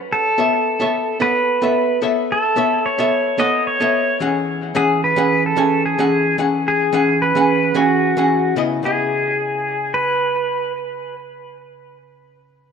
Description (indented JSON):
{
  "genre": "chillout",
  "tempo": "110 BPM",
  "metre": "4/4",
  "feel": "swing 54% on 16ths",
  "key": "unclear",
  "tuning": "A4 = 439 Hz",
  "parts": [
    { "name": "pedal steel guitar", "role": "melody", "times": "0.1-10.7 s", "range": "F#4 to D#5", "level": "-18 LUFS", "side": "equal", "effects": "tape echo" },
    { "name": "archtop guitar, miked and amplified", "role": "accompaniment", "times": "0.4-12.7 s", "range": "C#3 to G#5", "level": "-19 LUFS", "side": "moving between left 7 dB and right 4 dB", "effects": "auto-pan, low-pass filter, tape echo" }
  ],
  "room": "moderate plate reverb, RT60 2.6 s",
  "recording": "echo-heavy mix",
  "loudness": "-15 LUFS",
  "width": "side -6 dB against mid",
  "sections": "0.0-8.8 A section; 8.8-12.7 B section",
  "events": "filter sweep on hollow-body jazz guitar 0.0-8.8",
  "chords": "0.1 B9sus4; 4.5 E69; 8.8 C#m9"
}